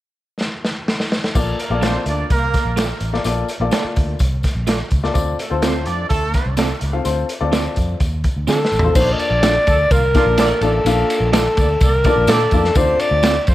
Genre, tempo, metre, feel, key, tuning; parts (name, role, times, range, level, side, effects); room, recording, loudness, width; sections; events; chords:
uptempo 1960s-style soul; 126 BPM; 4/4; straight; Bb major; A4 = 440 Hz
crunchy breakbeat drum kit; drums; 0.4-13.5 s; crash cymbal, hi-hat, kick drum, ride cymbal, snare drum, toms; -19 LUFS; equal
warm grand piano; accompaniment; 1.3-13.3 s; Bb3 to F5; -22 LUFS; left 5 dB
vintage muted fingered electric bass; bass; 1.4-13.5 s; A1 to D3; -21 LUFS; equal
tambourine; percussion; 1.4-13.5 s; -35 LUFS; left 4 dB
clear horn section; second line; 1.6-6.5, 9.7-13.5 s; D3 to D5; -25 LUFS; right 4 dB; tape echo
electric guitar through a small old amp; stabs; 1.8-13.3 s; A3 to D5; -24 LUFS; right 6 dB
warm alto saxophone; melody; 8.5-13.4 s; A4 to Eb5; -17 LUFS; equal
little or no reverb; -15 LUFS; side -15 dB against mid
0.0-1.4 A section; 1.4-9.0 B section; 9.0-13.5 C section
drum fill 0.4-1.4, 8.5-9.0
0.0 N.C.; 1.4 Bbmaj7; 5.2 Dm7; 9.0 Bbmaj7; 12.8 Dm7